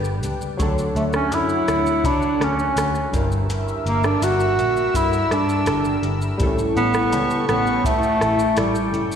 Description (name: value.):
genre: indie pop, bedroom pop.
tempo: 83 BPM.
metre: 4/4.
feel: straight.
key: D major.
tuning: A4 = 440 Hz.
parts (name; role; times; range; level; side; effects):
flamenco guitar; accompaniment; 0.0-9.2 s; G2 to E4; -28 LUFS; left 3 dB; ensemble chorus, warbly pitch drift, slapback echo.
warm analog keys; accompaniment; 0.0-9.2 s; D3 to C#5; -31 LUFS; right 2 dB; chorus, cassette tape, slapback echo.
phased analog pad; sustained chords; 0.0-9.2 s; A4 to E6; -30 LUFS; left 2 dB; phaser, chorus.
vintage muted picked electric bass; bass; 0.0-9.2 s; F#1 to D3; -25 LUFS; equal; none.
soft vintage rhythm box; drums; 0.0-9.2 s; hi-hat, kick drum, rim click, shaker; -26 LUFS; equal; slapback echo.
clear bass clarinet; melody; 1.0-9.1 s; G3 to F#4; -20 LUFS; right 1 dB; wide subtle chorus, slapback echo, ping-pong delay.
room: light reverb, digital ambience.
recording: live gig heard through the venue's PA, recital hall reverb.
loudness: -18 LUFS.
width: side -8 dB against mid.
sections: 0.0-9.2 A section.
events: none.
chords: 0.0 G; 0.6 Dmaj7; 3.1 Gm6; 6.4 A7.